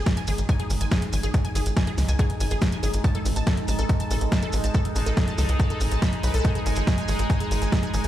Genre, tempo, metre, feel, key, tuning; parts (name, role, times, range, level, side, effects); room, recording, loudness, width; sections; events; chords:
psychedelic trance; 141 BPM; 4/4; straight; A4 = 441 Hz
bubbling stepped-filter texture; sustained chords; 0.0-8.1 s; G#3 to D#4; -30 LUFS; right 2 dB; chorus, built-in reverb, sidechain pumping
tight sequencer bass; bass; 0.0-8.1 s; G#1 to C#2; -24 LUFS; equal
big-room dance drum kit; drums; 0.1-8.1 s; hi-hat, snare drum; -31 LUFS; equal
electronic kick drum; drums; 0.1-7.8 s; -22 LUFS; equal
maracas; percussion; 0.1-8.1 s; -37 LUFS; right 3 dB
wide unison pluck; riff; 0.2-8.1 s; G#4 to B5; -33 LUFS; equal; auto-pan, sidechain pumping, digital delay
light reverb; played on a big sound system in a bare room, large studio reverb; -21 LUFS; side -12 dB against mid
0.0-8.1 A section
0.0 G#5; 3.0 Amaj7(b5, no3); 6.4 G#5